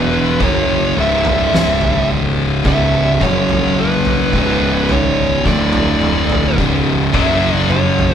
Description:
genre	stoner and doom metal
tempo	53 BPM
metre	4/4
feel	straight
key	C# phrygian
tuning	A4 = 440 Hz
part	fuzz lead guitar	melody	0.0-8.1 s	B4 to E5	-19 LUFS	right 1 dB	distortion
part	thick fuzz guitar	riff	0.0-8.1 s	C#2 to F#3	-18 LUFS	left 6 dB	distortion
part	thick fuzz guitar	riff	0.0-8.1 s	C#2 to F#3	-19 LUFS	right 8 dB	distortion
part	fuzz picked electric bass	bass	0.0-8.1 s	C#1 to F#1	-21 LUFS	equal	overdrive
part	oversized low-tuned drum kit	drums	0.4-8.1 s	kick drum, snare drum, toms	-20 LUFS	equal	none
room	moderate studio reverb, RT60 0.5 s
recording	band playing live in one room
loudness	-12 LUFS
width	side -8 dB against mid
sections	0.0-8.1 A section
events	none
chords	0.0 C#m; 3.2 F#5; 4.3 C#5; 5.5 D5; 6.6 C#5; 7.2 F#5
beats	0.41 1.54 | 2.66 3.79 4.91 6.03 | 7.16

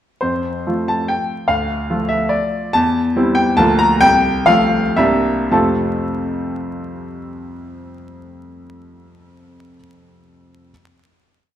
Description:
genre	classical, romantic triple-time dance for piano with dotted rhythms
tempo	104-154 BPM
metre	3/4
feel	rubato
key	F major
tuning	A4 = 440 Hz
part	clear baby grand piano	solo	0.2-10.7 s	C2 to Bb5	-15 LUFS	equal	none
room	wet recital hall reverb, RT60 1.4 s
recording	vinyl crackle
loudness	-14 LUFS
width	side -10 dB against mid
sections	0.2-5.5 A section; 5.5-8.6 final chord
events	slowing down 2.1-5.5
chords	0.2 F; 1.5 Dm; 2.7 C/E; 3.6 Bb/D; 4.0 F/C; 5.0 C9; 5.5 F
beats	| 0.21 0.66 1.09 | 1.49 1.90 2.31 | 2.75 3.17 3.58 | 4.01 4.47 4.97 | 5.52 6.05 6.58 | 7.07 7.59 8.12

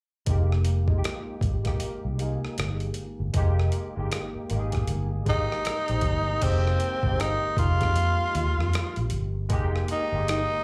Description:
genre	R&B, neo-soul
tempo	78 BPM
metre	4/4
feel	swing 60% on 16ths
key	F minor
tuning	A4 = 440 Hz
part	barky tine electric piano	accompaniment	0.3-10.6 s	Ab3 to Eb5	-36 LUFS	equal	overdrive, ensemble chorus, plate reverb, slapback echo
part	vintage muted fingered electric bass	bass	0.3-10.4 s	F1 to F2	-28 LUFS	equal	none
part	boom bap sampler-style drum kit	drums	0.3-10.5 s	crash cymbal, hi-hat, kick drum, rim click	-32 LUFS	equal	none
part	growling tenor saxophone	melody	5.3-10.6 s	C4 to F4	-29 LUFS	equal	slapback echo, plate reverb
room	light reverb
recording	live gig heard through the venue's PA, club reverb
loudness	-26 LUFS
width	mono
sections	0.3-6.4 A section; 6.4-10.6 B section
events	none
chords	0.3 Fm11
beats	| 0.27 1.04 1.81 2.58 | 3.35 4.11 4.88 5.65 | 6.42 7.19 7.96 8.73 | 9.50 10.27

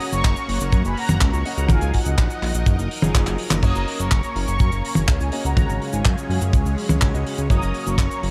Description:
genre	italo disco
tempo	124 BPM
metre	4/4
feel	straight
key	F# major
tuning	A4 = 440 Hz
part	mellow synth brass	melody	0.0-8.3 s	C#5 to D#6	-32 LUFS	equal	chorus, digital delay, shimmer reverb
part	lush unison pad	sustained chords	0.0-8.3 s	F#3 to F#5	-34 LUFS	equal	chorus, phaser, shimmer reverb
part	clear concert grand piano	stabs	0.0-8.3 s	C#3 to D#5	-34 LUFS	equal	shimmer reverb
part	damped 70s drum kit	drums	0.0-8.3 s	cabasa, crash cymbal, handclaps, hi-hat, toms	-27 LUFS	equal	none
part	fat analog bass	bass	0.1-8.3 s	F#1 to F#2	-25 LUFS	equal	tube saturation
part	kick drum	drums	0.2-8.1 s	none	-21 LUFS	equal	none
room	studio reverb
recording	none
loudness	-20 LUFS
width	mono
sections	0.0-8.3 A section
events	drum fill 3.3-3.6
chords	0.0 F#; 1.7 D#madd9/F#; 3.6 F#; 5.6 C#sus4; 7.5 F#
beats	0.24 0.73 1.21 | 1.70 2.18 2.67 3.15 | 3.63 4.12 4.60 5.08 | 5.57 6.05 6.54 7.02 | 7.50 7.99

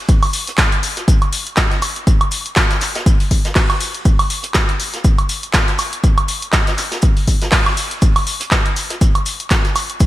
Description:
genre	house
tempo	121 BPM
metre	4/4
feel	swing 56% on 16ths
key	none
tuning	none
part	electronic kick drum	drums	0.1-10.1 s	none	-14 LUFS	equal	none
part	punchy analog drum machine	drums	0.1-10.1 s	handclaps, hi-hat, woodblock	-19 LUFS	equal	gated reverb
part	vintage brush drum kit	drums	0.1-10.1 s	hi-hat, shaker, snare drum	-25 LUFS	equal	high-pass filter on hats, high-pass filter on snare, high-pass filter on perc, high-pass filter on room, gated reverb
room	light reverb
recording	bright 1980s-style digital production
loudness	-14 LUFS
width	side -15 dB against mid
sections	0.0-10.1 A section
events	none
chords	none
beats	| 0.09 0.58 1.08 1.57 | 2.07 2.57 3.06 3.56 | 4.05 4.55 5.04 5.54 | 6.04 6.53 7.03 7.53 | 8.02 8.52 9.01 9.51 | 10.00

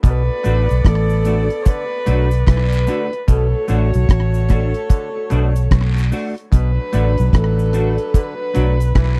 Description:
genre	roots reggae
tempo	74 BPM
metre	4/4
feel	swing 62% on 16ths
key	B minor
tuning	A4 = 440 Hz
part	warm horn section	second line	0.0-9.2 s	F#3 to D5	-32 LUFS	equal	dub echo
part	bright clav	arpeggios	0.0-9.1 s	B2 to F#3	-33 LUFS	equal	none
part	vintage muted fingered electric bass	bass	0.0-9.2 s	A1 to B1	-18 LUFS	equal	none
part	deep reggae drum kit	drums	0.0-9.2 s	hi-hat, kick drum, rim click	-16 LUFS	equal	none
part	cabasa and guiro	percussion	0.0-9.2 s	none	-39 LUFS	equal	none
part	dark viola	melody	0.1-9.2 s	F#4 to C#5	-26 LUFS	equal	dub echo
part	semi-hollow electric guitar	accompaniment	0.4-8.8 s	A3 to F#4	-28 LUFS	equal	ensemble chorus, dub echo
room	small room ambience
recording	dry, close 1970s-style studio recording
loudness	-17 LUFS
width	mono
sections	0.0-9.2 A section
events	none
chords	0.0 Bm7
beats	| 0.04 0.85 1.66 2.47 | 3.28 4.09 4.90 5.71 | 6.53 7.34 8.15 8.96

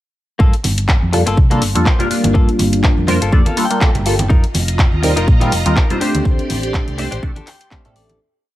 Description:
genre	filtered disco house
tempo	123 BPM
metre	4/4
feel	swing 55% on 16ths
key	G minor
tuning	A4 = 439 Hz
part	direct-recorded clean electric guitar	riff	0.4-8.2 s	Bb3 to G5	-24 LUFS	left 4 dB	sidechain pumping, low-pass filter
part	hollow-body short-scale fingered electric bass	bass	0.4-8.2 s	F1 to C3	-19 LUFS	equal	sidechain pumping, low-pass filter
part	electronic kick drum	drums	0.4-7.8 s	none	-13 LUFS	equal	studio reverb
part	egg shaker and congas	percussion	0.4-8.2 s	none	-26 LUFS	right 2 dB	sidechain pumping on perc, low-pass filter on perc
part	house drum kit	drums	0.5-8.2 s	handclaps, hi-hat	-22 LUFS	left 1 dB	sidechain pumping on hats, studio reverb
part	funky polysynth comp	accompaniment	1.1-8.2 s	G3 to C5	-18 LUFS	equal	chorus, phaser, sidechain pumping, low-pass filter
part	phased string machine	sustained chords	4.3-8.2 s	F4 to C6	-26 LUFS	right 1 dB	ensemble chorus, phaser, sidechain pumping, low-pass filter
room	little or no reverb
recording	none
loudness	-12 LUFS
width	side -15 dB against mid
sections	0.4-8.2 groove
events	filter sweep 0.4-8.2; clean electric guitar fill 2.8-4.3, 7.2-8.2; fade-out 5.6-8.2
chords	0.4 Gm9; 4.3 F7sus4; 6.0 D7sus4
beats	| 0.40 0.89 1.38 1.86 | 2.35 2.84 3.33 3.81 | 4.30 4.79 5.28 5.77 | 6.25 6.74 7.23 7.72

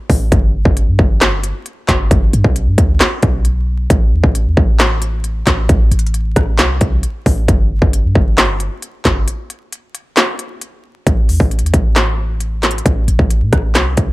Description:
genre	hip hop, trap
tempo	134 BPM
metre	4/4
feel	half-time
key	unclear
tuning	A4 = 436 Hz
part	clean 808-style bass	bass	0.1-14.1 s	G1 to A2	-15 LUFS	equal	none
part	industrial drum kit	drums	0.1-14.1 s	handclaps, hi-hat, kick drum, rim click, snare drum	-13 LUFS	equal	distortion, overdrive
room	little or no reverb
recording	vinyl crackle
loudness	-12 LUFS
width	side -20 dB against mid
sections	0.0-11.1 A section; 11.1-14.1 B section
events	break 9.3-11.1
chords	none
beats	| 0.32 0.77 1.21 1.66 | 2.11 2.56 3.00 3.45 | 3.90 4.35 4.80 5.24 | 5.69 6.14 6.59 7.04 | 7.48 7.93 8.38 8.83 | 9.27 9.72 10.17 10.62 | 11.06 11.51 11.96 12.41 | 12.86 13.30 13.75

